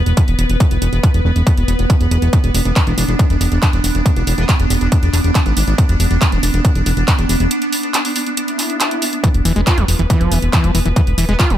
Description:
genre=psychedelic trance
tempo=139 BPM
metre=4/4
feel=straight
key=unclear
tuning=A4 = 440 Hz
part: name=pulsing gated texture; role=sustained chords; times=0.0-11.6 s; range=B3 to B4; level=-21 LUFS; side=right 1 dB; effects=chorus, built-in reverb, sidechain pumping
part: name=fat analog bass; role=bass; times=0.0-11.6 s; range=E1 to G#1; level=-15 LUFS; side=equal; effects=tube saturation
part: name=techno drum kit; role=drums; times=0.1-11.6 s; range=handclaps, hi-hat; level=-21 LUFS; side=right 1 dB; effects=overdrive
part: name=electronic kick drum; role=drums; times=0.2-11.5 s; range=none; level=-14 LUFS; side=equal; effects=distortion, overdrive
part: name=metallic wobble bass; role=second line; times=4.4-4.5, 11.3-11.4 s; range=B3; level=-32 LUFS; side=right 4 dB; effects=none
part: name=swell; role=sound effects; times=8.5-9.2 s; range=none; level=-26 LUFS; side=left 1 dB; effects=none
part: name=overdriven acid bass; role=riff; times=9.2-11.6 s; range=E3 to F4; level=-19 LUFS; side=moving between left 4 dB and right 5 dB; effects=distortion, auto-pan, cassette tape, sidechain pumping, dub echo
room=little or no reverb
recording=none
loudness=-12 LUFS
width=side -11 dB against mid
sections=0.0-11.6 A section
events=break 7.5-9.2; swell 8.5-9.2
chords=0.0 E5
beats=0.17 | 0.60 1.03 1.47 1.90 | 2.33 2.76 3.19 3.62 | 4.06 4.49 4.92 5.35 | 5.78 6.21 6.65 7.08 | 7.51 7.94 8.37 8.80 | 9.24 9.67 10.10 10.53 | 10.96 11.39

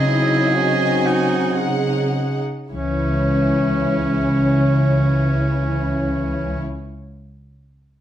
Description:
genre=classical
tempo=49-67 BPM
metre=3/4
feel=rubato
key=C# minor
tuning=A4 = 438 Hz
part: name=rich chamber violin section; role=melody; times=0.0-6.6 s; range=C#5 to F#5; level=-29 LUFS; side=left 1 dB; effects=none
part: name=clear oboe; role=second line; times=0.0-6.6 s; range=C#4 to G#4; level=-24 LUFS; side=right 3 dB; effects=none
part: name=rich chamber violin section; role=second line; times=0.0-6.6 s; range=E4 to G#5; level=-30 LUFS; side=left 2 dB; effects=none
part: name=rich studio viola section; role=accompaniment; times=0.0-6.6 s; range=C#4 to G#4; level=-26 LUFS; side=right 1 dB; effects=none
part: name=mellow French horn section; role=sustained chords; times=0.0-6.6 s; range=E3 to C#4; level=-23 LUFS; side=left 2 dB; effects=none
part: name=rich chamber cello section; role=bass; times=0.0-6.6 s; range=C#3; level=-24 LUFS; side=equal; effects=none
part: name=dark chamber double bass section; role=bass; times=2.7-6.6 s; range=C#2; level=-21 LUFS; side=right 1 dB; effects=none
room=wet stone room reverb, RT60 0.9 s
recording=dark, warm production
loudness=-16 LUFS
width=side -11 dB against mid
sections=0.0-2.7 A section; 2.7-5.8 B section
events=slowing down 0.0-2.7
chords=0.0 G#7/C#; 2.7 C#m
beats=0.55 1.57 | 2.71 3.77 4.81

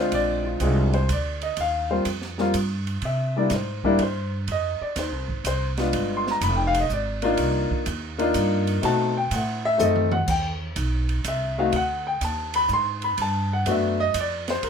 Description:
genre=jazz piano trio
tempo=124 BPM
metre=3/4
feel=swing 68% on 8ths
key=C minor, E minor from 10.3 s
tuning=A4 = 441 Hz
part: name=warm grand piano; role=melody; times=0.0-14.7 s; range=G3 to C6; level=-23 LUFS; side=left 2 dB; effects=none
part: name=upright bass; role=bass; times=0.0-14.7 s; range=F1 to C3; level=-27 LUFS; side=right 1 dB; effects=none
part: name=open jazz drum kit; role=drums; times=0.1-14.7 s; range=crash cymbal, hi-hat, kick drum, ride cymbal, snare drum, toms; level=-32 LUFS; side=right 4 dB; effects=none
room=moderate studio ambience, RT60 0.5 s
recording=minimal, uncompressed stereo recording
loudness=-21 LUFS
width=side -6 dB against mid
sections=0.0-10.3 A section; 10.3-14.7 A section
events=grand piano solo 0.0-14.7; drum fill 9.8-10.3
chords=0.1 Bb7; 1.6 Eb69; 3.0 C; 4.5 F7(no3); 5.9 G7b9; 7.4 Cm11; 8.8 B7b9; 10.3 E5; 11.7 D7b9; 13.2 Gmaj7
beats=| 0.12 0.61 1.09 | 1.58 2.06 2.55 | 3.03 3.52 4.00 | 4.48 4.97 5.45 | 5.93 6.42 6.90 | 7.38 7.87 8.35 | 8.83 9.32 9.80 | 10.28 10.77 11.25 | 11.73 12.22 12.70 | 13.19 13.67 14.15 | 14.63

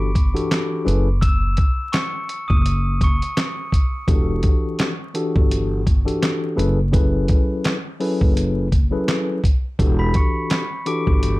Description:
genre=hip hop, boom-bap hip-hop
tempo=84 BPM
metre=4/4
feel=swing 55% on 16ths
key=E dorian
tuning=A4 = 440 Hz
part: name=mellow tine electric piano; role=accompaniment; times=0.0-11.4 s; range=E3 to B4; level=-22 LUFS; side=left 2 dB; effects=fast stereo tremolo, high-pass filter, low-pass filter
part: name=upright bass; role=bass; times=0.0-11.4 s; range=E1 to G1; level=-21 LUFS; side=equal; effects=none
part: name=dusty soul sampler-style drum kit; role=drums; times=0.2-11.4 s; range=handclaps, hi-hat, kick drum, snare drum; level=-19 LUFS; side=equal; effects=none
part: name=glockenspiel with brass mallets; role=melody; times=1.2-4.1, 10.0-11.0 s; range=B5 to E7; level=-28 LUFS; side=equal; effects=high-pass filter, low-pass filter, ping-pong delay
room=light reverb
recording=dark, warm production, vinyl crackle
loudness=-17 LUFS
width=side -20 dB against mid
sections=0.0-9.8 A section; 9.8-11.4 A section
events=none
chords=0.0 Em11; 0.9 F#7(no3); 4.1 Em11; 6.6 F#m11; 9.8 Em11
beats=0.51 | 1.22 1.93 2.65 3.36 | 4.08 4.79 5.50 6.22 | 6.93 7.65 8.36 9.08 | 9.79 10.51 11.22

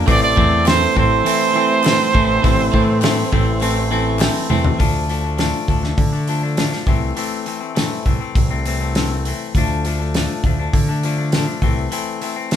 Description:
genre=indie rock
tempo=101 BPM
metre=4/4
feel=straight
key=D minor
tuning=A4 = 441 Hz
part: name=crunchy overdriven guitar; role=riff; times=0.0-12.6 s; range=E3 to D4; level=-22 LUFS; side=left 7 dB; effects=none
part: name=crunchy overdriven guitar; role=riff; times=0.0-4.8 s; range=E3 to C4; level=-21 LUFS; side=right 4 dB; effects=none
part: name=breathy trumpet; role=melody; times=0.1-4.2 s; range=C5 to D5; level=-18 LUFS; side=right 6 dB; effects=none
part: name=mellow tine electric piano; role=second line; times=0.1-4.2 s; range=C6 to D6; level=-32 LUFS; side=left 1 dB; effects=none
part: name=growling fingered electric bass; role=bass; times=0.1-11.9 s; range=A1 to D3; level=-21 LUFS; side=equal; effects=overdrive
part: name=loose indie drum kit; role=drums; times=0.1-12.6 s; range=hi-hat, kick drum, snare drum, toms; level=-19 LUFS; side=equal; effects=none
part: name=group handclap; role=percussion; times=0.7-4.3 s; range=none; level=-34 LUFS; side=left 7 dB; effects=none
room=light reverb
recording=band playing live in one room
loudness=-15 LUFS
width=side -9 dB against mid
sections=0.0-4.8 A section; 4.8-12.6 B section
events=drum fill 4.5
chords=0.1 Am; 4.8 Dm; 6.9 Am/C; 9.5 Dm; 11.6 Am/C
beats=| 0.08 0.67 1.26 1.84 | 2.44 3.02 3.62 4.21 | 4.80 5.39 5.98 6.57 | 7.17 7.76 8.36 8.95 | 9.54 10.14 10.73 11.32 | 11.92 12.51

